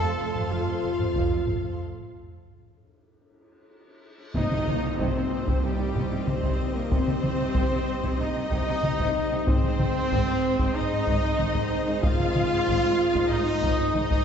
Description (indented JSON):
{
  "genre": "cinematic, epic orchestral film score",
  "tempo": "94 BPM",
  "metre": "4/4",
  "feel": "straight",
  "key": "C minor",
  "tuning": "A4 = 438 Hz",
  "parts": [
    { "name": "warm symphonic violin section", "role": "melody", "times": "0.0-14.2 s", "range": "G4 to A5", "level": "-36 LUFS", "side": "left 4 dB", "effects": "none" },
    { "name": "warm symphonic violin section", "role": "second line", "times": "0.0-14.2 s", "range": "G4 to F5", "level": "-34 LUFS", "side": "left 1 dB", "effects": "none" },
    { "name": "rich symphonic viola section", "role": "accompaniment", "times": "0.0-14.2 s", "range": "C3 to A4", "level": "-35 LUFS", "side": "right 2 dB", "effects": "none" },
    { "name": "mellow French horn section", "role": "sustained chords", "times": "0.0-14.2 s", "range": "G3 to A4", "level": "-29 LUFS", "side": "left 2 dB", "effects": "none" },
    { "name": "mellow trombone section", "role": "sustained chords", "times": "0.0-14.2 s", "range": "Eb3 to A3", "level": "-38 LUFS", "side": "right 4 dB", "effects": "none" },
    { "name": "warm symphonic string section", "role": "sustained chords", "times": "0.0-14.2 s", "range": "C4 to C6", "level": "-37 LUFS", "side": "equal", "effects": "none" },
    { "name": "mellow trumpet", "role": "stabs", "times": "0.0-14.2 s", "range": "G3 to A4", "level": "-33 LUFS", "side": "right 1 dB", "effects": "none" },
    { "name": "warm symphonic cello section", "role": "bass", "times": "0.0-14.2 s", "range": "F2 to C3", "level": "-34 LUFS", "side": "right 2 dB", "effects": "none" },
    { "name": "rich symphonic double bass section", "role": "bass", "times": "0.2-14.0 s", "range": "F1 to C2", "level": "-33 LUFS", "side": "right 2 dB", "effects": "none" },
    { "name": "taiko ensemble", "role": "drums", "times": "0.4-14.2 s", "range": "none", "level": "-28 LUFS", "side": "equal", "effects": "none" },
    { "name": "cymbal swell and tam-tam", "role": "percussion", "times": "1.8-6.9 s", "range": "none", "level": "-37 LUFS", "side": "equal", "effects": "none" }
  ],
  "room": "wet concert hall reverb, RT60 2.1 s",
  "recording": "heard from further back in the room, nothing above 7.9 kHz",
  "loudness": "-23 LUFS",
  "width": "side -7 dB against mid",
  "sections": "0.0-4.4 A section; 4.4-14.2 B section",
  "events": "break 1.8-4.4; drum fill 3.7-4.4; band accent 4.4-5.0",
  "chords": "0.0 F; 4.4 Cm; 9.5 Ab"
}